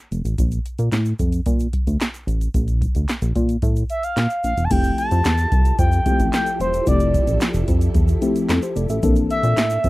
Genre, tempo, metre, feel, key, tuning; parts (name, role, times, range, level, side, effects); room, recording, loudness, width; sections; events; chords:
early-eighties boogie funk; 111 BPM; 4/4; straight; F major; A4 = 440 Hz
chorused synth bass; bass; 0.1-9.9 s; E1 to Bb2; -20 LUFS; equal
electro analog drum machine; drums; 0.1-9.9 s; crash cymbal, handclaps, hi-hat, kick drum, snare drum; -21 LUFS; equal
egg shaker; percussion; 0.1-9.9 s; -43 LUFS; right 6 dB
expressive synth lead; melody; 3.9-9.9 s; C5 to A5; -22 LUFS; equal; chorus
mellow FM electric piano; accompaniment; 4.7-9.6 s; E3 to E5; -22 LUFS; left 3 dB; chorus
soft string machine; sustained chords; 4.7-9.9 s; F3 to A4; -30 LUFS; equal; ensemble chorus
little or no reverb; dry, close 1970s-style studio recording, faint mains hum; -17 LUFS; side -19 dB against mid
0.0-4.7 A section; 4.7-9.9 B section
0.4 Bbmaj7(no3); 4.7 Fmaj9; 9.0 Bbmaj9#11